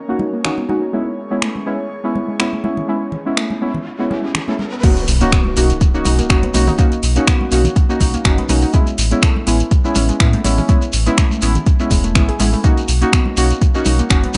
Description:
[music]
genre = deep house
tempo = 123 BPM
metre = 4/4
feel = swing 54% on 16ths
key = B major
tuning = A4 = 442 Hz
[part]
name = airy breathy pad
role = sustained chords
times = 0.0-4.8 s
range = C#4 to C#5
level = -34 LUFS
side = equal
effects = chorus, sidechain pumping
[part]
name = deep mellow chord stab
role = stabs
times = 0.1-14.4 s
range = G#3 to F#4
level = -22 LUFS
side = equal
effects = chorus, sidechain pumping, tape echo
[part]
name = warbly dusty pluck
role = arpeggios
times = 0.2-14.4 s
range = G#3 to G#4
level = -28 LUFS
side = equal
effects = chorus, phaser, sidechain pumping, tape echo
[part]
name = congas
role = percussion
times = 0.2-14.4 s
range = none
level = -28 LUFS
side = equal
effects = sidechain pumping on perc
[part]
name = deep house drum kit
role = drums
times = 0.4-14.4 s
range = crash cymbal, finger snaps, hi-hat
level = -25 LUFS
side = equal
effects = overdrive
[part]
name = riser and impact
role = sound effects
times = 3.1-6.8 s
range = none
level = -30 LUFS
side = equal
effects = none
[part]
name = electronic kick drum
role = drums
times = 4.8-14.2 s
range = none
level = -16 LUFS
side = equal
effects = overdrive
[part]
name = shekere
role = percussion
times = 4.8-14.4 s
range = none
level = -29 LUFS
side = equal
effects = none
[part]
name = sub bass with octave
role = bass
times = 5.1-14.4 s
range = E1 to A2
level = -19 LUFS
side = equal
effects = sidechain pumping
[sound]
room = little or no reverb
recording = nothing above 10.7 kHz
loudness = -16 LUFS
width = mono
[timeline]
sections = 0.0-4.8 A section; 4.8-14.4 B section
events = filter sweep on synth pluck 0.0-4.8; riser 3.1-4.8; drop 4.8-14.4; impact 4.8-6.8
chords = 0.0 Bmaj9 (rootless); 0.9 Amaj9 (rootless); 4.8 Bmaj9; 8.7 Amaj9; 12.6 Bmaj9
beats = 0.44 | 0.93 1.42 1.91 2.40 | 2.88 3.37 3.86 4.35 | 4.83 5.32 5.81 6.30 | 6.79 7.27 7.76 8.25 | 8.74 9.22 9.71 10.20 | 10.69 11.18 11.66 12.15 | 12.64 13.13 13.62 14.10

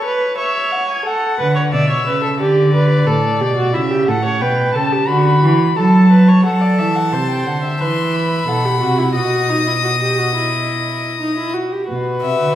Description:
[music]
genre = classical, baroque-style fugue for string quartet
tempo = 89 BPM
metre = 4/4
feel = straight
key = D major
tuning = A4 = 440 Hz
[part]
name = dark violin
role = second line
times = 0.0-12.6 s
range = B4 to B5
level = -21 LUFS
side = left 3 dB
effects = none
[part]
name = warm viola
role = accompaniment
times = 0.0-12.6 s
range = D#4 to D5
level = -19 LUFS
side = right 1 dB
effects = none
[part]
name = dark cello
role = bass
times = 1.4-12.6 s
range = A2 to F#3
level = -16 LUFS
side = right 1 dB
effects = none
[part]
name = warm violin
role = melody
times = 6.4-12.6 s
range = E5 to D#6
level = -22 LUFS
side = left 6 dB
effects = none
[sound]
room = wet recital hall reverb, RT60 1.4 s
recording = heard from further back in the room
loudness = -13 LUFS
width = side -12 dB against mid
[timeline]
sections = 0.0-6.4 A section; 6.4-11.9 B section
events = none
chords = 0.0 A (rootless); 1.1 D; 2.4 A9sus4; 3.7 A7; 5.1 D; 6.4 F#m7b5; 9.2 B; 11.9 E5/B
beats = 0.38 | 1.06 1.73 2.40 3.08 | 3.75 4.42 5.09 5.77 | 6.45 7.13 7.80 8.47 | 9.15 9.84 10.52 11.20 | 11.88

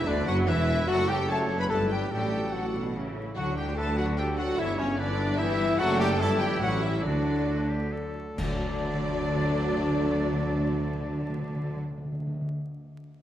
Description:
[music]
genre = classical, dramatic, fast romantic movement for symphony orchestra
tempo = 133-149 BPM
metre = 3/4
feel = straight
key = D major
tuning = A4 = 439 Hz
[part]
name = warm symphonic violin section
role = melody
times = 0.0-11.8 s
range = C#5 to B5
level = -37 LUFS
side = left 3 dB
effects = none
[part]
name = clear oboe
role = second line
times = 0.0-11.8 s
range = E4 to A5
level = -37 LUFS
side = equal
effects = none
[part]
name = dark clarinet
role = second line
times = 0.0-11.8 s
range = C#4 to B4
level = -35 LUFS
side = left 2 dB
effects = none
[part]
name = silver concert flute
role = second line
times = 0.0-11.8 s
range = C#5 to B5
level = -37 LUFS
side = left 1 dB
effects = none
[part]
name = warm symphonic violin section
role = second line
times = 0.0-11.8 s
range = C#4 to B4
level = -37 LUFS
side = left 2 dB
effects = none
[part]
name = rich symphonic viola section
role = accompaniment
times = 0.0-11.8 s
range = D3 to F#4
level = -35 LUFS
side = right 2 dB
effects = none
[part]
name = mellow French horn section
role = sustained chords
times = 0.0-11.8 s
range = C#3 to D4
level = -35 LUFS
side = left 1 dB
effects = none
[part]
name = concert harp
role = arpeggios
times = 0.0-12.7 s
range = F#2 to F#5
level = -38 LUFS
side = left 4 dB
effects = none
[part]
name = mellow trumpet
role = stabs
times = 0.0-11.8 s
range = C#4 to D5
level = -35 LUFS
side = equal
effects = none
[part]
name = rich symphonic cello section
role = bass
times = 0.0-11.8 s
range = D2 to D3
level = -35 LUFS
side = right 1 dB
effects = none
[part]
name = rich symphonic double bass section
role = bass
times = 0.0-11.8 s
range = E1 to D2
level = -34 LUFS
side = right 1 dB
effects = none
[part]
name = warm tuba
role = bass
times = 0.0-11.8 s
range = E1 to D2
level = -34 LUFS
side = right 2 dB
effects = none
[part]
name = timpani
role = percussion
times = 7.1-12.5 s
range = D3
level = -33 LUFS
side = equal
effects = none
[part]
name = clash cymbals and concert bass drum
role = percussion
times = 8.4-9.2 s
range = none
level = -38 LUFS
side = equal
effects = none
[sound]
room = wet scoring stage reverb, RT60 1.7 s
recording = vinyl crackle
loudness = -25 LUFS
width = side -11 dB against mid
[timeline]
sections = 0.0-8.4 A section; 8.4-11.0 B section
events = slowing down 5.2-8.4; band accent 8.4-8.8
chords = 0.0 Em; 0.9 D/F#; 1.7 Em7/G; 2.1 D/A; 2.9 A; 3.4 D; 4.6 Em/G; 5.8 D/F#; 6.2 Em7/G; 6.6 A7; 7.1 D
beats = 0.07 0.47 | 0.88 1.28 1.69 | 2.10 2.53 2.94 | 3.36 3.78 4.18 | 4.59 4.99 5.39 | 5.80 6.21 6.63 | 7.06 7.49 7.93 | 8.38 8.82 9.26 | 9.70 10.14 10.58

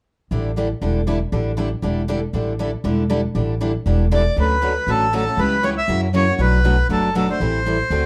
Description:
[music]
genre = acoustic string swing (jazz manouche)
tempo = 237 BPM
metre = 4/4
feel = swing 55% on 8ths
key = unclear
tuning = A4 = 440 Hz
[part]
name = picked steel-string acoustic guitar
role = accompaniment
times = 0.3-8.1 s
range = B2 to A4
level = -28 LUFS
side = equal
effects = none
[part]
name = picked steel-string acoustic guitar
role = accompaniment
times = 0.3-8.1 s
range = B2 to B4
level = -28 LUFS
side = equal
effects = none
[part]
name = upright bass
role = bass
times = 0.3-8.1 s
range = E1 to F#2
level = -23 LUFS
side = equal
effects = none
[part]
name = accordion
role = melody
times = 4.1-8.1 s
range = A4 to E5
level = -22 LUFS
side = equal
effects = slapback echo, plate reverb
[sound]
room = moderate studio reverb, RT60 0.5 s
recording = dark, warm production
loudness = -20 LUFS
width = mono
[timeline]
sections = 0.3-4.4 A section; 4.4-8.1 B section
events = none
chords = 0.3 A7sus4; 4.4 Dmaj7; 5.4 C#m7b5; 5.9 F#7; 6.4 Bm7; 7.4 Am7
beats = | 0.32 0.57 0.82 1.08 | 1.33 1.58 1.83 2.09 | 2.34 2.59 2.85 3.10 | 3.35 3.61 3.86 4.11 | 4.37 4.62 4.87 5.13 | 5.38 5.63 5.89 6.14 | 6.39 6.65 6.90 7.15 | 7.41 7.66 7.92

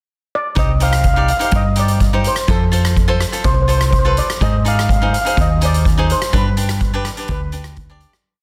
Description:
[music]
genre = calypso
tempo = 125 BPM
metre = 4/4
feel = straight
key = C harmonic minor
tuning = A4 = 441 Hz
[part]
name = steel pan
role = melody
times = 0.4-8.0 s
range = A4 to F5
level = -23 LUFS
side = equal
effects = tape echo
[part]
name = cavaquinho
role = accompaniment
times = 0.6-8.1 s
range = D4 to D5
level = -26 LUFS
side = equal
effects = none
[part]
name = hollow-body short-scale fingered electric bass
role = bass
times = 0.6-8.0 s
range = C2 to Ab2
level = -19 LUFS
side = equal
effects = none
[part]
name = street-band drum kit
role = drums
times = 0.6-8.2 s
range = hi-hat, kick drum, rim click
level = -20 LUFS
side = equal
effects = soft clipping on snare
[sound]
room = light reverb, small room ambience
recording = dense, heavily limited modern master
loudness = -16 LUFS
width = mono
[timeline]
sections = 0.0-0.6 pickup bar; 0.6-8.3 verse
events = fade-out 6.3-8.3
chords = 0.0 N.C.; 0.6 Cmadd9; 2.5 F; 4.4 Ab; 6.3 G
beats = 0.08 | 0.56 1.04 1.52 2.00 | 2.48 2.96 3.44 3.92 | 4.41 4.89 5.37 5.85 | 6.33 6.82 7.30 7.78

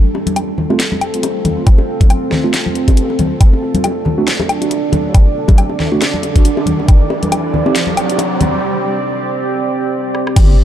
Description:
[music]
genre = deep dubstep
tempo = 138 BPM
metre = 4/4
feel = swing 57% on 16ths, half-time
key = unclear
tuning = A4 = 440 Hz
[part]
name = deep dark ambient pad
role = sustained chords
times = 0.0-10.6 s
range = G3 to D5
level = -18 LUFS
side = right 2 dB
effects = chorus, built-in reverb
[part]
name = deep soft wobble bass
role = bass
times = 0.0-10.6 s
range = F1 to F#2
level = -21 LUFS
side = equal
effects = none
[part]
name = bongos and congas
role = percussion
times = 0.1-8.5 s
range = none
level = -19 LUFS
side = left 2 dB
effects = dub echo
[part]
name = dubstep drum kit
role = drums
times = 0.3-10.5 s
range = crash cymbal, hi-hat, rim click, snare drum, woodblock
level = -22 LUFS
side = left 2 dB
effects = overdrive, high-pass filter on hats, high-pass filter on perc, high-pass filter on snare, high-pass filter on cymbals
[part]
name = mellow tine electric piano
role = stabs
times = 0.7-7.7 s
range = A3 to G4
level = -23 LUFS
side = right 3 dB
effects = none
[part]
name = electronic kick drum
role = drums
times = 1.7-7.0, 10.4-10.5 s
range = none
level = -8 LUFS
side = equal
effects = overdrive
[part]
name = riser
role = sound effects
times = 4.8-8.6 s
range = none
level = -24 LUFS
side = equal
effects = none
[sound]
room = light reverb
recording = dark, warm production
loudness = -12 LUFS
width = side -11 dB against mid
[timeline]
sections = 0.0-10.4 A section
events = build-up 0.0-10.4; riser 4.8-8.6; break 8.6-10.4; drum fill 10.1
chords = 0.0 F; 3.4 D; 6.9 C5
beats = 0.36 0.80 1.23 | 1.67 2.10 2.54 2.97 | 3.41 3.84 4.28 4.71 | 5.14 5.58 6.01 6.45 | 6.88 7.32 7.75 8.19 | 8.62 9.06 9.49 9.93 | 10.36

